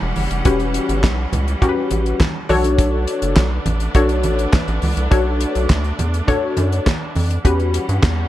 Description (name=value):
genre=early-eighties boogie funk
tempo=103 BPM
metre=4/4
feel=straight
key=E dorian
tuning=A4 = 441 Hz
part: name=clear studio string section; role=sustained chords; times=0.0-8.3 s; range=E3 to F#5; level=-27 LUFS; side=equal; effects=none
part: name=rubbery square bass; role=bass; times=0.0-8.3 s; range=E1 to G2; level=-19 LUFS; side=equal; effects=none
part: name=damped 70s drum kit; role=drums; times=0.2-8.2 s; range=handclaps, hi-hat, kick drum, snare drum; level=-19 LUFS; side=equal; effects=none
part: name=congas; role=percussion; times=0.2-8.2 s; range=none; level=-27 LUFS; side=right 3 dB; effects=none
part: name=funky polysynth comp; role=accompaniment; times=0.5-8.0 s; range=C#4 to C#5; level=-20 LUFS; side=left 3 dB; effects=chorus
room=small room ambience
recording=dark, warm production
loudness=-15 LUFS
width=side -14 dB against mid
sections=0.0-8.3 A section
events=none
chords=0.0 Em69; 2.5 Bm7; 7.4 Em69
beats=| 0.46 1.04 1.62 2.20 | 2.79 3.37 3.95 4.53 | 5.12 5.70 6.28 6.86 | 7.45 8.03